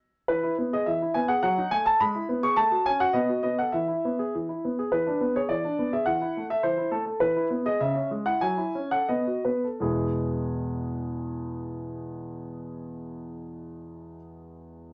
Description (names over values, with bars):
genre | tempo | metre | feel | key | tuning
classical-period piano sonatina | 81-107 BPM | 2/4 | straight | E major | A4 = 440 Hz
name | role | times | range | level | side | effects
clear concert grand piano | solo | 0.3-14.9 s | E2 to C#6 | -27 LUFS | equal | none
room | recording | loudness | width
moderate studio reverb, RT60 0.6 s | none | -27 LUFS | mono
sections
0.0-4.9 A section; 4.9-9.8 B section; 9.8-12.7 C section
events
slowing down 6.6-9.8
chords
0.3 E; 1.4 D#dim/F#; 2.0 E/G#; 2.6 F#m/A; 3.1 B7; 3.7 E; 4.9 E7; 6.1 A5/E; 7.2 E; 7.8 C#m; 8.4 F#m7; 9.1 B7; 9.8 E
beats
| 0.29 0.87 | 1.44 2.01 | 2.57 3.15 | 3.74 4.33 | 4.92 5.50 | 6.07 6.64 | 7.21 7.79 | 8.41 9.08 | 9.81 10.54 | 11.26 11.98